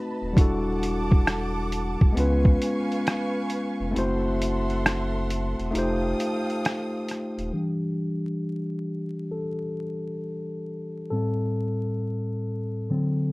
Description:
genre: lo-fi hip hop.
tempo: 67 BPM.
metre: 4/4.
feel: swing 65% on 16ths.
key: E minor.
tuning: A4 = 441 Hz.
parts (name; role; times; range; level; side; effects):
tine electric piano; accompaniment; 0.0-13.3 s; A2 to C5; -26 LUFS; left 1 dB; cassette tape, low-pass filter.
warm studio string section; sustained chords; 0.0-7.5 s; A4 to Eb6; -34 LUFS; right 2 dB; none.
sub bass with octave; bass; 0.2-7.5 s; D1 to C#2; -28 LUFS; equal; none.
lo-fi sampler-style drum kit; drums; 0.4-7.5 s; hi-hat, kick drum, rim click; -21 LUFS; equal; none.
room: moderate studio reverb, RT60 0.5 s.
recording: vinyl crackle.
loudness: -24 LUFS.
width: side -22 dB against mid.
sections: 0.0-7.5 A section; 7.5-13.3 B section.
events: break 4.0-7.5; tine electric piano solo 7.5-13.3; filter sweep on tine electric piano 7.5-13.3.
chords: 0.4 Em11; 2.2 C#7; 4.0 F#m7b5; 5.7 F9; 7.5 Em7; 11.1 Am7.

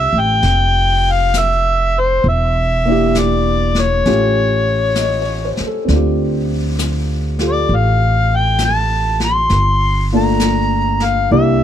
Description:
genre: jazz ballad.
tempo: 66 BPM.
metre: 4/4.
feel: swing 68% on 8ths.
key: unclear.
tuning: A4 = 440 Hz.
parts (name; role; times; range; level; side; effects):
overdriven harmonica; melody; 0.0-11.6 s; C5 to C6; -16 LUFS; left 2 dB; none.
warm grand piano; accompaniment; 0.0-11.6 s; A3 to Eb5; -20 LUFS; equal; none.
upright bass; bass; 0.0-11.6 s; E1 to D2; -17 LUFS; right 1 dB; none.
jazz brush drum kit; drums; 0.4-11.6 s; brushed snare drum, hi-hat, snare drum; -26 LUFS; left 3 dB; none.
room: little or no reverb.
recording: none.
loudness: -13 LUFS.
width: side -10 dB against mid.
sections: 0.0-11.6 A section.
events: none.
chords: 0.0 Bb69 (rootless); 2.2 Em7b5; 4.1 Aaug7; 5.9 Dm7; 9.5 Gm7.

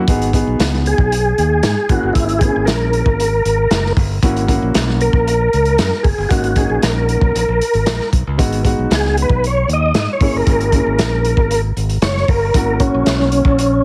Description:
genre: uptempo 1960s-style soul.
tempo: 115 BPM.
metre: 4/4.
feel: straight.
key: G# minor.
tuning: A4 = 440 Hz.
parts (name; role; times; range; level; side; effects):
modern bright fingered electric bass; bass; 0.0-13.8 s; F#1 to G#2; -21 LUFS; equal; none.
dark upright piano; accompaniment; 0.1-13.6 s; G#3 to G#4; -23 LUFS; equal; none.
crunchy breakbeat drum kit; drums; 0.1-13.7 s; hi-hat, kick drum, snare drum; -20 LUFS; equal; none.
tonewheel organ; melody; 0.9-13.8 s; C#4 to D#5; -19 LUFS; equal; chorus vibrato, fast rotary speaker.
room: light reverb.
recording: heavily compressed radio sound.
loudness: -15 LUFS.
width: mono.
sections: 0.1-13.8 A section.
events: tonewheel organ solo 0.1-13.8.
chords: 0.1 G#m7; 1.9 A#m7b5; 4.2 F#7/G#; 6.3 D#m7/G#; 8.4 G#m7; 10.2 A#m7b5; 12.6 F#7/G#.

